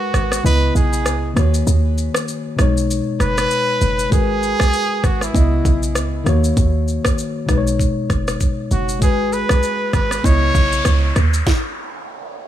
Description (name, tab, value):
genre	afrobeats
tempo	98 BPM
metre	4/4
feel	swing 58% on 16ths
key	G# minor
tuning	A4 = 440 Hz
part	warm trumpet	melody	0.0-11.2 s	E4 to C#5	-22 LUFS	right 1 dB	tape echo
part	tine electric piano	accompaniment	0.0-11.2 s	B2 to D#5	-22 LUFS	left 4 dB	none
part	short 808-style bass	bass	0.1-11.4 s	F#1 to D#2	-18 LUFS	right 1 dB	none
part	afro-pop drum kit	drums	0.1-11.6 s	kick drum, rim click, shaker, snare drum	-20 LUFS	right 1 dB	none
part	noise sweep	sound effects	9.7-12.5 s	none	-28 LUFS	left 1 dB	none
room	digital ambience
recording	none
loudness	-15 LUFS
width	side -11 dB against mid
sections	0.0-12.5 A section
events	break 0.0-4.1; noise sweep 9.7-12.5; stop 11.5-12.5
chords	0.4 C#m9; 1.4 D#m7; 2.6 B69; 4.1 G#m9; 5.3 C#m9; 6.3 D#m7; 7.5 B69; 9.0 G#m7; 10.2 C#m9; 11.2 N.C.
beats	0.45 1.06 | 1.67 2.28 2.90 3.51 | 4.12 4.73 5.34 5.96 | 6.57 7.18 7.79 8.41 | 9.02 9.63 10.24 10.86 | 11.47 12.08